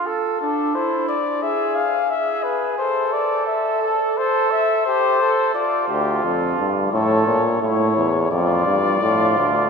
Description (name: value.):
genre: classical, imitative canzona for brass ensemble.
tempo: 87 BPM.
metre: 4/4.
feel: straight.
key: unclear.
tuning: A4 = 440 Hz.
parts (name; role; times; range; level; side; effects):
warm flugelhorn; second line; 0.0-9.7 s; D4 to A4; -22 LUFS; right 5 dB; none.
dark trumpet; melody; 0.4-9.7 s; G4 to F5; -20 LUFS; left 5 dB; none.
clear euphonium; bass; 5.9-9.7 s; D2 to Bb2; -20 LUFS; equal; none.
room: wet cathedral reverb, RT60 4.8 s.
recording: recorded in a church or concert hall.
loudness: -17 LUFS.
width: side -5 dB against mid.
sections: 0.0-9.7 A section.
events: none.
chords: 0.1 Am; 1.4 E/G#; 2.8 Am; 5.5 Dm; 6.9 A; 8.3 Dm/F.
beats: | 0.06 0.75 1.43 2.11 | 2.80 3.48 4.18 4.86 | 5.55 6.24 6.93 7.63 | 8.32 9.02.